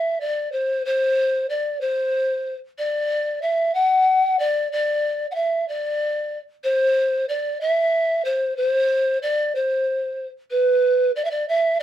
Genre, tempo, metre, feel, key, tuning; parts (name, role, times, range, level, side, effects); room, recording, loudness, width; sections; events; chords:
andean folk; 62 BPM (dotted quarters); 6/8; straight; A4 = 443 Hz
breathy mellow polished pan flute; solo; 0.0-11.8 s; B4 to F#5; -19 LUFS; equal
moderate small room reverb, RT60 0.5 s; -19 LUFS; side -11 dB against mid
0.0-11.8 A section